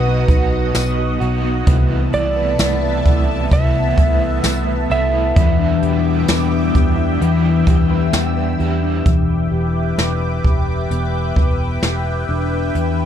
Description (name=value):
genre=dream pop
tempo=65 BPM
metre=4/4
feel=straight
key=E minor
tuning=A4 = 440 Hz
part: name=electric slide guitar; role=melody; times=0.0-8.1 s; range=B4 to E5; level=-22 LUFS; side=right 4 dB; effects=ping-pong delay
part: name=overdriven electric guitar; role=accompaniment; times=0.0-9.1 s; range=E2 to F#4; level=-26 LUFS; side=right 6 dB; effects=tremolo, ensemble chorus
part: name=lush unison pad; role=sustained chords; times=0.0-13.1 s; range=B3 to E6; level=-23 LUFS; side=left 2 dB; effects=chorus, phaser
part: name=mellow electric guitar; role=arpeggios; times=0.0-13.1 s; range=B2 to B4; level=-21 LUFS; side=left 5 dB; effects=lush chorus, ping-pong delay
part: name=vintage muted picked electric bass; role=bass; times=0.0-13.1 s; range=E1 to E2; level=-20 LUFS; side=right 1 dB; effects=none
part: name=jazz brush drum kit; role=drums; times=0.3-13.0 s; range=hi-hat, kick drum, snare drum, tambourine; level=-17 LUFS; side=equal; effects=none
room=moderate plate reverb, RT60 2.6 s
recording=dark, warm production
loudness=-14 LUFS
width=side -9 dB against mid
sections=0.0-9.1 A section; 9.1-13.1 B section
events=none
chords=0.0 B; 1.7 Amadd9/C; 5.4 Em7